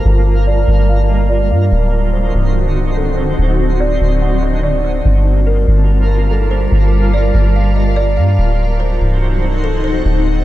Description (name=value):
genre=hip hop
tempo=144 BPM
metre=4/4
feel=half-time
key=G minor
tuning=A4 = 439 Hz
part: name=kalimba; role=melody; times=0.0-10.0 s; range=A4 to F#5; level=-22 LUFS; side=right 1 dB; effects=low-pass filter, tape echo
part: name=granular cloud pad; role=sustained chords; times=0.0-10.4 s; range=D3 to A5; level=-19 LUFS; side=equal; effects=built-in reverb, low-pass filter
part: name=twinkling granular texture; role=texture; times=0.0-10.4 s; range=F#3 to C5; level=-26 LUFS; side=equal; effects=built-in reverb
part: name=soft 808-style bass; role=bass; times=0.1-10.4 s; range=C1 to G2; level=-13 LUFS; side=equal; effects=none
room=little or no reverb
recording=dark, warm production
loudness=-12 LUFS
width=side -14 dB against mid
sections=0.0-10.4 A section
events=filter sweep 0.0-10.4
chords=0.0 Gm9; 1.7 D7b9; 5.1 Gm9; 8.4 D7b9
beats=| 0.05 0.47 0.88 1.30 | 1.72 2.13 2.55 2.97 | 3.38 3.80 4.22 4.63 | 5.05 5.47 5.88 6.30 | 6.72 7.13 7.55 7.97 | 8.38 8.80 9.22 9.63 | 10.05